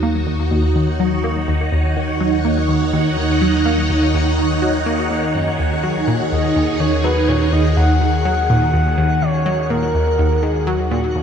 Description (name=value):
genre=ambient, sequencer-driven space music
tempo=124 BPM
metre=4/4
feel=straight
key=Eb minor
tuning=A4 = 440 Hz
part: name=phased string machine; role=sustained chords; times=0.0-11.2 s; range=Eb3 to Gb5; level=-19 LUFS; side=right 2 dB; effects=ensemble chorus, phaser
part: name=analog pluck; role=riff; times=0.0-11.2 s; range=Eb2 to Bb3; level=-20 LUFS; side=equal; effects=chorus, phaser, ping-pong delay
part: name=analog drone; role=bass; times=0.0-11.2 s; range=Eb2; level=-21 LUFS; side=equal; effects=chorus
part: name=twinkling granular texture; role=texture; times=0.0-11.2 s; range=Gb4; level=-34 LUFS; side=right 1 dB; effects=built-in reverb
part: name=breathy flute-like synth lead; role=melody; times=6.3-11.2 s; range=Gb4 to Gb5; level=-21 LUFS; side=left 1 dB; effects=chorus, cassette tape, ping-pong delay
room=wet echo chamber reverb, RT60 2.4 s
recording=echo-heavy mix, nothing above 10.4 kHz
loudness=-15 LUFS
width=side -7 dB against mid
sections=0.0-11.2 A section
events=fade-in on synth texture 0.0-11.2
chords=0.0 Ebm7